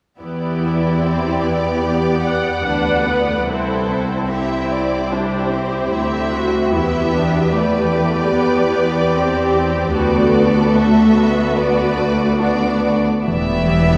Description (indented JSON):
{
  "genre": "cinematic, emotional film score for orchestra",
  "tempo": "73 BPM",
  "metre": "4/4",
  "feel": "rubato",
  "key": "E minor",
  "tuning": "A4 = 439 Hz",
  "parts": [
    { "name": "warm symphonic violin section", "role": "second line", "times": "0.2-14.0 s", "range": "E4 to E5", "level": "-24 LUFS", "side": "equal", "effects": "none" },
    { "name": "warm symphonic viola section", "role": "accompaniment", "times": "0.2-14.0 s", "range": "A3 to F#5", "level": "-21 LUFS", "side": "equal", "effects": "none" },
    { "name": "warm symphonic cello section", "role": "bass", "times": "0.2-14.0 s", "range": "C2 to E2", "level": "-21 LUFS", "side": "equal", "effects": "none" },
    { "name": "warm symphonic violin section", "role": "melody", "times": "13.3-14.0 s", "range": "E5", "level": "-24 LUFS", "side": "equal", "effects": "none" },
    { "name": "concert harp", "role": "arpeggios", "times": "13.3-14.0 s", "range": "E3 to G3", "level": "-23 LUFS", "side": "equal", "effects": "none" },
    { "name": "rich symphonic double bass section", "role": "bass", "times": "13.3-14.0 s", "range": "E1", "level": "-21 LUFS", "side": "equal", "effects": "none" }
  ],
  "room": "wet cathedral reverb, RT60 4.5 s",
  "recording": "recorded in a church or concert hall",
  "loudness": "-17 LUFS",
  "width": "mono",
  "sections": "0.2-13.3 A section",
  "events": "none",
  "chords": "0.2 Em7; 3.5 C; 6.7 Em7; 9.9 D6; 13.3 Em7"
}